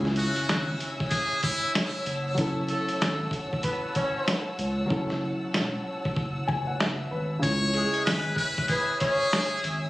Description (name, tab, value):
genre	hip hop, boom-bap hip-hop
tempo	95 BPM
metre	4/4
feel	swing 60% on 16ths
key	unclear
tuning	A4 = 438 Hz
part	dark grand piano	accompaniment	0.0-9.9 s	C#3 to G#5	-32 LUFS	equal	cassette tape
part	dark studio string section	sustained chords	0.0-9.9 s	C#5 to E6	-35 LUFS	equal	none
part	saturated sub bass	bass	0.0-9.9 s	E1 to C#2	-31 LUFS	equal	none
part	dusty soul sampler-style drum kit	drums	0.1-9.8 s	hi-hat, kick drum, snare drum	-29 LUFS	equal	none
part	trumpet with metal mute	melody	0.2-1.7, 7.4-9.9 s	E4 to C#5	-28 LUFS	left 1 dB	digital delay
part	mellow horn section	stabs	2.7-9.5 s	G#3 to C#5	-30 LUFS	equal	digital delay
room	small room ambience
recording	recorded on a phone in the room, studio reverb, vinyl crackle, lossy compression artefacts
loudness	-24 LUFS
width	side -17 dB against mid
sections	0.0-9.9 A section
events	hi-hats muted 4.9-7.4; grand piano fill 6.2-7.4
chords	0.0 C#m; 2.1 F#m7; 7.4 C#m